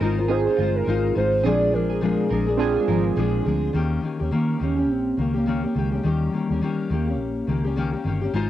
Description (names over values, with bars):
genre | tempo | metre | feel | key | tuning
indie pop | 104 BPM | 4/4 | swing 60% on 16ths | unclear | A4 = 440 Hz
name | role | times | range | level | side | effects
warbly nostalgic lead | melody | 0.0-7.5 s | G3 to D5 | -26 LUFS | right 1 dB | analog chorus, cassette tape, tape echo
semi-hollow electric guitar | second line | 0.0-3.0 s | F4 to Bb4 | -31 LUFS | right 6 dB | lush chorus, tape echo
fingerpicked steel-string acoustic guitar | accompaniment | 0.0-8.5 s | Bb2 to C5 | -24 LUFS | left 4 dB | lush chorus, warbly pitch drift
warm analog keys | accompaniment | 0.0-3.8 s | C4 to Bb4 | -26 LUFS | right 8 dB | chorus, cassette tape
vintage muted fingered electric bass | bass | 0.0-8.5 s | G1 to Eb3 | -26 LUFS | right 1 dB | none
room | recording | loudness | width
light reverb | home recording on cassette | -20 LUFS | side -12 dB against mid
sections
0.0-3.7 A section; 3.7-8.5 B section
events
none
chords
0.0 Ab6; 1.4 Bb7; 3.7 Eb7